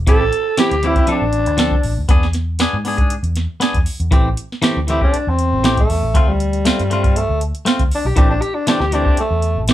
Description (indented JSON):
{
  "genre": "straight-eighth soul blues",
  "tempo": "118 BPM",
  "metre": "4/4",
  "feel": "swing 53% on 16ths",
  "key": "A minor",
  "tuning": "A4 = 440 Hz",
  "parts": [
    { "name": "vintage muted fingered electric bass", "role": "bass", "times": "0.0-9.7 s", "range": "A1 to G#2", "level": "-20 LUFS", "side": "equal", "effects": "none" },
    { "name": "growling tenor saxophone", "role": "melody", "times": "0.1-9.7 s", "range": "G3 to A4", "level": "-19 LUFS", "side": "equal", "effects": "none" },
    { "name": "clean electric guitar", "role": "stabs", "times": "0.1-9.7 s", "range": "E3 to A4", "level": "-20 LUFS", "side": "left 1 dB", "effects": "none" },
    { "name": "soft vintage rhythm box", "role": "drums", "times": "0.1-9.7 s", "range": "hi-hat, kick drum, snare drum", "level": "-16 LUFS", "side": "equal", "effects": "none" }
  ],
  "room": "moderate studio ambience, RT60 0.5 s",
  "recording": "band playing live in one room",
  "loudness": "-14 LUFS",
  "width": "side -13 dB against mid",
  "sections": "0.0-4.1 A section; 4.1-9.7 B section",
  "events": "tenor saxophone solo 4.1-9.7",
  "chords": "0.1 Am7; 1.1 Dm7; 2.1 E7; 4.1 Am7; 6.1 Dm7; 8.2 Am7"
}